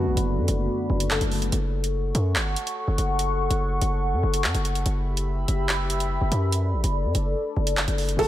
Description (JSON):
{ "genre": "hip hop, drill", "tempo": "144 BPM", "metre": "4/4", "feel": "half-time", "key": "unclear", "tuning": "A4 = 440 Hz", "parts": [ { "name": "warbly lo-fi synth keys", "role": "accompaniment", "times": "0.0-1.5, 8.2-8.3 s", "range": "F#2 to A4", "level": "-27 LUFS", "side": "left 1 dB", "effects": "chorus" }, { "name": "dark analog pad", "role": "sustained chords", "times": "0.0-8.3 s", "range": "A3 to C#6", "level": "-29 LUFS", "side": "left 2 dB", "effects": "chorus, phaser" }, { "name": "distorted 808-style bass", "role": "bass", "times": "0.0-8.3 s", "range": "F#1 to F#2", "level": "-24 LUFS", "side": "equal", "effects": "distortion" }, { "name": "drill drum kit", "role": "drums", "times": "0.2-8.3 s", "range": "crash cymbal, handclaps, hi-hat", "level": "-28 LUFS", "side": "right 1 dB", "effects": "none" }, { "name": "dark upright piano", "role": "melody", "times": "8.2-8.3 s", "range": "A4", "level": "-19 LUFS", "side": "equal", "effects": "none" } ], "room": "little or no reverb", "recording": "none", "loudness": "-22 LUFS", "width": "side -13 dB against mid", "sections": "0.0-8.2 A section", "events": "none", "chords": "0.0 Bm7/F#; 1.5 F#m; 4.9 Em/F#; 6.5 Bm7/F#", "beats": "0.27 0.69 1.11 | 1.52 1.94 2.36 2.77 | 3.19 3.61 4.02 4.44 | 4.86 5.27 5.69 6.11 | 6.52 6.94 7.36 7.77 | 8.19" }